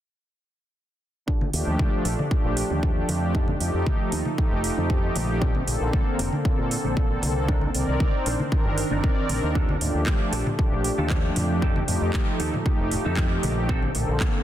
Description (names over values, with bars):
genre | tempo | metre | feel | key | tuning
nu-disco, nu disco | 116 BPM | 4/4 | straight | F mixolydian | A4 = 438 Hz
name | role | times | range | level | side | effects
clean electric guitar | riff | 1.3-14.1 s | C4 to Bb4 | -35 LUFS | right 2 dB | ensemble chorus, low-pass filter, ping-pong delay
electronic kick drum | drums | 1.3-14.3 s | none | -24 LUFS | equal | none
congas | percussion | 1.4-14.3 s | none | -32 LUFS | left 1 dB | none
warm analog pad | accompaniment | 1.5-14.4 s | D3 to D5 | -26 LUFS | equal | chorus, sidechain pumping, ping-pong delay
fingered electric bass with an envelope filter | bass | 1.5-14.2 s | F1 to Bb2 | -27 LUFS | equal | tube saturation
house drum kit | drums | 1.5-14.3 s | handclaps, hi-hat | -32 LUFS | right 2 dB | none
room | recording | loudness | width
light reverb | dense, heavily limited modern master | -21 LUFS | side -12 dB against mid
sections
1.3-14.4 A section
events
filter sweep on clean electric guitar 1.3-14.4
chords
1.3 Ebmaj9#11; 3.3 F9; 5.4 Bbmaj9; 7.5 Cm9; 9.6 Ebmaj9#11; 11.6 F9; 13.7 Bbmaj9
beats
| 1.28 1.80 2.31 2.83 | 3.35 3.87 4.38 4.90 | 5.42 5.93 6.45 6.97 | 7.49 8.00 8.52 9.04 | 9.56 10.07 10.59 11.11 | 11.62 12.14 12.66 13.18 | 13.69 14.21